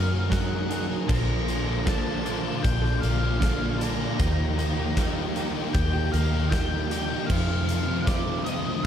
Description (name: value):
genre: rock, shoegaze and dream pop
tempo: 77 BPM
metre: 4/4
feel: straight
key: Bb major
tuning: A4 = 442 Hz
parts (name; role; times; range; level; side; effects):
- octave-fuzz lead guitar; melody; 0.0-8.9 s; D5 to Bb5; -34 LUFS; left 1 dB; distortion, slapback echo
- icy glass pad; sustained chords; 0.0-8.9 s; Gb4 to Eb6; -42 LUFS; equal; chorus, built-in reverb
- direct-recorded clean electric guitar; arpeggios; 0.0-8.9 s; Eb3 to Ab4; -39 LUFS; right 11 dB; none
- crunchy overdriven guitar; riff; 0.0-8.9 s; F2 to G4; -31 LUFS; left 10 dB; analog chorus
- direct-recorded clean electric guitar; riff; 0.0-8.9 s; F2 to Bb4; -33 LUFS; right 9 dB; reverse reverb
- vintage muted fingered electric bass; bass; 0.0-8.7 s; Bb1 to Gb2; -28 LUFS; equal; none
- huge arena drum kit; drums; 0.3-8.6 s; crash cymbal, hi-hat, kick drum, snare drum; -29 LUFS; equal; none
- cranked stack guitar; riff; 1.1-8.8 s; F2 to Eb4; -33 LUFS; equal; overdrive
room: studio ambience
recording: none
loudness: -23 LUFS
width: side -9 dB against mid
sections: 0.0-8.9 A section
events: none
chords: 0.0 Gb69; 1.1 Bbmaj7; 4.2 Ebmaj9; 7.3 F7sus4